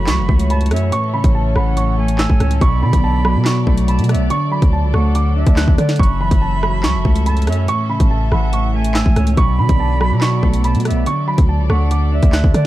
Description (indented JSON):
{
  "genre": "hip hop, drill",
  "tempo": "142 BPM",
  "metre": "4/4",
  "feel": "half-time",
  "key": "unclear",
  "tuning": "A4 = 438 Hz",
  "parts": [
    { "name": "dark concert grand piano", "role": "melody", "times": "0.0-12.7 s", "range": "A5 to F#6", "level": "-24 LUFS", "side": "right 3 dB", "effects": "low-pass filter, tape echo" },
    { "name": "jazz flute", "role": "second line", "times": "0.0-12.7 s", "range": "D5 to B5", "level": "-27 LUFS", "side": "right 4 dB", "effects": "tape echo" },
    { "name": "mellow electric guitar", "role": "accompaniment", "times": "0.0-12.7 s", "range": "F#2 to D5", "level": "-21 LUFS", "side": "equal", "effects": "low-pass filter" },
    { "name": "warm symphonic string section", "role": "sustained chords", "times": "0.0-12.7 s", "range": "E3 to E5", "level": "-26 LUFS", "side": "equal", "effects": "none" },
    { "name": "long sustained 808-style bass", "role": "bass", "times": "0.0-12.7 s", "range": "F#1 to D3", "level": "-16 LUFS", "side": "equal", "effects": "none" },
    { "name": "drill drum kit", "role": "drums", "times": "0.1-12.6 s", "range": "handclaps, hi-hat, kick drum, rim click, snare drum", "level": "-16 LUFS", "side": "equal", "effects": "none" }
  ],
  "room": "small room ambience",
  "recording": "dark, warm production, vinyl crackle",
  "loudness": "-13 LUFS",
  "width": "side -15 dB against mid",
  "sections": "0.0-12.7 A section",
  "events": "none",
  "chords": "0.0 F#m7; 0.9 A; 2.6 Bm7; 4.3 D; 6.0 F#m7; 7.7 A; 9.4 Bm7; 11.1 D"
}